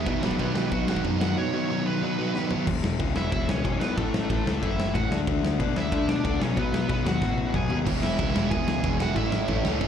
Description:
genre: punk rock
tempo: 185 BPM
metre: 4/4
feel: straight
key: E major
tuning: A4 = 440 Hz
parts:
  - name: smooth overdriven lead guitar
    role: melody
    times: 0.0-9.6 s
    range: A3 to G#5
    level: -32 LUFS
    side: right 4 dB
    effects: slapback echo
  - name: overdriven semi-hollow guitar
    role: riff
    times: 0.0-9.9 s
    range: E2 to D4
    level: -28 LUFS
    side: left 11 dB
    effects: slapback echo
  - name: overdriven semi-hollow guitar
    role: riff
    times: 0.0-2.7, 7.9-9.9 s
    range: A2 to E4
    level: -28 LUFS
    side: right 10 dB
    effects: none
  - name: growling picked electric bass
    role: bass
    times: 0.0-9.9 s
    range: E1 to B2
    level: -29 LUFS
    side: equal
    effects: overdrive
  - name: big rock drum kit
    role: drums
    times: 0.1-9.9 s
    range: crash cymbal, kick drum, ride cymbal, snare drum, toms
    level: -29 LUFS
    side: equal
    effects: none
room: little or no reverb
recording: live gig heard through the venue's PA, club ambience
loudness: -23 LUFS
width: side -8 dB against mid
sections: 0.0-2.7 A section; 2.7-9.9 B section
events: lead electric guitar solo 0.0-2.7; drum fill 2.3-2.7, 7.2-7.9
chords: 0.1 B; 2.7 E5; 4.0 A; 5.1 D5; 6.4 B; 7.9 E; 9.2 A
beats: | 0.07 0.39 0.72 1.05 | 1.37 1.70 2.02 2.35 | 2.67 3.00 3.32 3.65 | 3.97 4.30 4.62 4.95 | 5.27 5.59 5.92 6.24 | 6.57 6.89 7.22 7.54 | 7.87 8.19 8.51 8.84 | 9.16 9.49 9.81

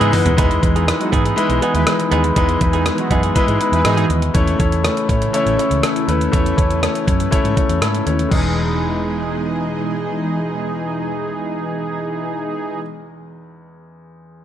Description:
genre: 1980s-style pop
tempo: 121 BPM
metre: 4/4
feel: straight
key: E major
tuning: A4 = 440 Hz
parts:
  - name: warm concert grand piano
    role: accompaniment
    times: 0.0-14.4 s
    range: E2 to D#5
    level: -20 LUFS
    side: left 3 dB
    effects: none
  - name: string machine, cellos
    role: sustained chords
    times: 0.0-12.8 s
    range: B2 to D#5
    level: -25 LUFS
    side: right 1 dB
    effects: ensemble chorus
  - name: direct-recorded clean electric guitar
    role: riff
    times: 0.0-4.3 s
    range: B3 to G#4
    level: -25 LUFS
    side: right 7 dB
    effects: wide subtle chorus, tape echo
  - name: mellow synth brass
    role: stabs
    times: 0.0-4.1, 8.3-12.8 s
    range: E3 to B4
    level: -24 LUFS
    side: right 2 dB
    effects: chorus
  - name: vintage muted fingered electric bass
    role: bass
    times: 0.0-12.8 s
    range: E1 to E3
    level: -20 LUFS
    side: equal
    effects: none
  - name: clean 12-bit digital drum machine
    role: drums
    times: 0.0-8.4 s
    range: crash cymbal, hi-hat, kick drum, rim click, toms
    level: -20 LUFS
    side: right 1 dB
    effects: gated reverb
room: moderate plate reverb, RT60 2.4 s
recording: none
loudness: -15 LUFS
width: side -10 dB against mid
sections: 0.4-8.3 A section; 8.3-12.3 B section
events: drum fill 0.0-0.4; band accent 0.0-0.4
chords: 0.4 Emaj7; 4.3 A; 8.3 Emaj7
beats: | 0.38 0.88 1.37 1.87 | 2.36 2.86 3.35 3.85 | 4.35 4.84 5.34 5.83 | 6.33 6.83 7.32 7.82 | 8.31 8.81 9.30 9.80 | 10.30 10.79 11.29 11.78

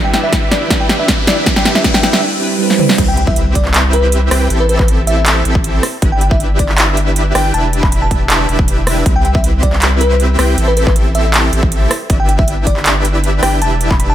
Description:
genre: future bass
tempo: 158 BPM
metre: 4/4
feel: half-time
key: unclear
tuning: A4 = 439 Hz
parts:
  - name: bell-like FM electric piano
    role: melody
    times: 0.0-14.1 s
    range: B4 to B5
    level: -20 LUFS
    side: left 1 dB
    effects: chorus, sidechain pumping, digital delay
  - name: glassy digital keys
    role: accompaniment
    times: 0.0-3.0 s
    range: G3 to B4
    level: -19 LUFS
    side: right 5 dB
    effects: chorus, phaser, sidechain pumping
  - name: dense compressed supersaw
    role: riff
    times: 0.0-14.1 s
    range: C4 to G5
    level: -19 LUFS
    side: equal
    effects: sidechain pumping, low-pass filter
  - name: riser, swell and impact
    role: sound effects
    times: 0.0-4.5 s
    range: none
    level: -21 LUFS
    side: right 1 dB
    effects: none
  - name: big-room dance drum kit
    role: drums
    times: 0.1-14.1 s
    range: crash cymbal, handclaps, hi-hat, rim click, snare drum, toms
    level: -16 LUFS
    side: equal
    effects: studio reverb
  - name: electronic kick drum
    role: drums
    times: 0.3-14.0 s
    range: none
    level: -15 LUFS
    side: equal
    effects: overdrive, studio reverb
  - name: saturated sub bass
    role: bass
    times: 3.0-14.1 s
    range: E1 to C2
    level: -15 LUFS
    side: equal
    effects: sidechain pumping
room: light reverb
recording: none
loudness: -10 LUFS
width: side -12 dB against mid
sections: 0.0-3.0 A section; 3.0-14.1 B section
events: build-up 0.0-3.0; drum fill 0.0-2.2, 2.7; riser 0.0-3.0; swell 2.2-3.0; drop 3.0-14.1; impact 3.0-4.5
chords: 0.0 G6; 3.0 Cmaj7; 4.5 Am7; 5.8 G6; 7.5 Em7; 9.1 Cmaj7; 10.6 Am7; 11.9 G6; 13.6 Em7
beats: 0.33 0.70 1.08 | 1.47 1.84 2.22 2.60 | 2.98 3.36 3.74 4.12 | 4.50 4.88 5.26 5.64 | 6.02 6.40 6.78 7.16 | 7.54 7.92 8.30 8.68 | 9.06 9.44 9.82 10.20 | 10.58 10.96 11.34 11.72 | 12.10 12.48 12.86 13.24 | 13.62 14.00

